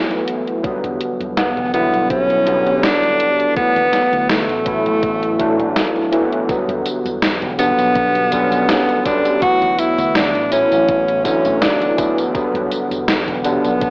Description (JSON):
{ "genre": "vaporwave", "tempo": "82 BPM", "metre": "4/4", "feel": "swing 54% on 16ths", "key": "E dorian", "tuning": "A4 = 440 Hz", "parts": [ { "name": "clear tenor saxophone", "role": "melody", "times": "0.0-13.9 s", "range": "A3 to F#4", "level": "-16 LUFS", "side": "equal", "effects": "tape echo" }, { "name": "overdriven tine electric piano", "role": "accompaniment", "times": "0.0-13.9 s", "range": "D3 to E4", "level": "-18 LUFS", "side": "equal", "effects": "analog chorus, vintage 12-bit sampler grit, tape echo" }, { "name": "gated 80s digital drum machine", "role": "drums", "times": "0.1-13.9 s", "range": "hi-hat, snare drum, tambourine", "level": "-20 LUFS", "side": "equal", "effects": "gated reverb, gated reverb snare, vintage 12-bit sampler grit" }, { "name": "slap bass with an envelope filter", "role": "bass", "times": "0.6-13.9 s", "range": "E1 to E2", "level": "-28 LUFS", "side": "equal", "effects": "tube saturation" }, { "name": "electronic kick drum", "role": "drums", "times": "0.6-13.9 s", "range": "none", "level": "-25 LUFS", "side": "equal", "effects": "vintage 12-bit sampler grit" } ], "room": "moderate concert hall reverb, RT60 2.2 s", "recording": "worn, warbling old tape, cassette tape, warbly pitch drift, AM radio sound", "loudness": "-14 LUFS", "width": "side -29 dB against mid", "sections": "0.0-6.5 A section; 6.5-13.9 B section", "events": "none", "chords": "0.0 D6 (rootless); 0.6 Em7; 3.6 D6; 6.5 Em7; 9.4 D6; 12.3 Em7" }